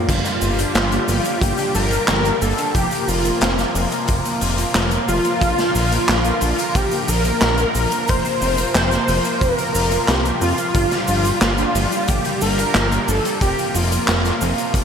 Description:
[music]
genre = synthwave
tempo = 90 BPM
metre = 4/4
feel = straight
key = G minor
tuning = A4 = 439 Hz
[part]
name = wide unison lead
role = melody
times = 0.0-14.4 s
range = F4 to C5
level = -22 LUFS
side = equal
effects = ensemble chorus, ping-pong delay
[part]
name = soft supersaw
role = sustained chords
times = 0.0-14.8 s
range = C3 to Bb4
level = -25 LUFS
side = equal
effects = phaser
[part]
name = electric guitar at the edge of break-up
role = arpeggios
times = 0.0-14.8 s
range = F3 to C5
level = -28 LUFS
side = left 3 dB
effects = spring reverb, digital delay
[part]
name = fat analog bass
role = bass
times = 0.1-14.8 s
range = F1 to F2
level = -22 LUFS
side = equal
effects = sidechain pumping
[part]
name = kick drum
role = drums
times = 0.1-14.8 s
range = none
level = -26 LUFS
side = equal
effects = none
[part]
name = raw garage drum kit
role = drums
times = 0.1-14.8 s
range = cabasa, crash cymbal, handclaps, hi-hat, snare drum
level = -21 LUFS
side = equal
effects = gated reverb
[sound]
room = moderate lush hall reverb, RT60 2.5 s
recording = bright 1980s-style digital production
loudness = -16 LUFS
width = side -7 dB against mid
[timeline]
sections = 0.1-14.8 A section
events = none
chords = 0.1 Gm7; 2.8 Fsus4; 5.4 Bb; 8.1 Fsus4; 10.8 Gm7; 13.4 Fsus4

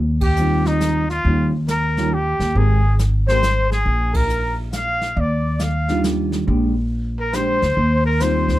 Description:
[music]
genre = jazz, small-group swing and bop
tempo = 138 BPM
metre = 3/4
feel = swing 65% on 8ths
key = Eb major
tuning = A4 = 438 Hz
[part]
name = upright bass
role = bass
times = 0.0-8.6 s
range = Ab1 to Eb2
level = -19 LUFS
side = equal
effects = none
[part]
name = trumpet with straight mute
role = melody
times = 0.2-8.6 s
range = Eb4 to F5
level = -23 LUFS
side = left 2 dB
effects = none
[part]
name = warm trumpet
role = second line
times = 0.2-8.6 s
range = Eb4 to F5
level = -25 LUFS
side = right 1 dB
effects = none
[part]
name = jazz brush drum kit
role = drums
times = 0.2-8.6 s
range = brushed snare drum, hi-hat, kick drum, ride cymbal, snare drum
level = -27 LUFS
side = equal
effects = none
[part]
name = hollow-body jazz guitar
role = accompaniment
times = 0.4-3.4, 5.9-8.6 s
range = Eb3 to Bb4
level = -22 LUFS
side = right 1 dB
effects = none
[sound]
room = light reverb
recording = dark, warm production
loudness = -16 LUFS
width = side -15 dB against mid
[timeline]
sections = 0.0-8.6 A section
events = band accent 0.2, 4.1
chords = 0.0 Eb69; 1.2 Eb9; 2.6 Abmaj9; 3.9 Bb5; 5.2 Ebmaj9; 6.5 Bb13; 7.8 Eb69

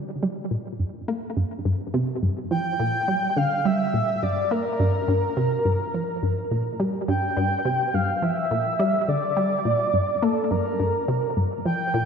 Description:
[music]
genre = ambient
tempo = 105 BPM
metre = 4/4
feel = straight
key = G dorian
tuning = A4 = 440 Hz
[part]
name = resonant blip pluck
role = riff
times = 0.0-12.0 s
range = G2 to Bb3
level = -24 LUFS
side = equal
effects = chorus, tape echo
[part]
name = breathy flute-like synth lead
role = melody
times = 2.5-12.1 s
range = A4 to G5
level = -24 LUFS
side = equal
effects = analog chorus, tape echo
[sound]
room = wet lush hall reverb, RT60 2.8 s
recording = dreamy mix soaked in reverb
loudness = -22 LUFS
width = side -6 dB against mid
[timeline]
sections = 0.0-12.1 A section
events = filter sweep on synth arpeggio sound 0.0-12.1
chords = 0.0 Gm7

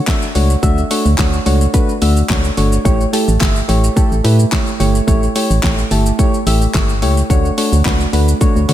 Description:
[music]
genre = dance-pop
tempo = 108 BPM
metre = 4/4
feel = straight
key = D major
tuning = A4 = 439 Hz
[part]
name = soft electric-piano-like synth keys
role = accompaniment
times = 0.1-8.7 s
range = A3 to E5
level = -17 LUFS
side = equal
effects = chorus, sidechain pumping, slapback echo
[part]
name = pop drum kit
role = drums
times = 0.1-8.7 s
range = handclaps, hi-hat, kick drum, shaker, snare drum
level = -17 LUFS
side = equal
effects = none
[part]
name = group handclap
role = percussion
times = 0.1-8.0 s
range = none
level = barely audible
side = none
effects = none
[part]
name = organ-like FM bass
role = bass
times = 0.4-8.7 s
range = G1 to D3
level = -14 LUFS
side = equal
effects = sidechain pumping
[sound]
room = light reverb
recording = none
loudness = -12 LUFS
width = side -12 dB against mid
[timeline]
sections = 0.0-8.7 A section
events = none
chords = 0.0 Dmaj7; 2.9 A7; 7.3 Dmaj7

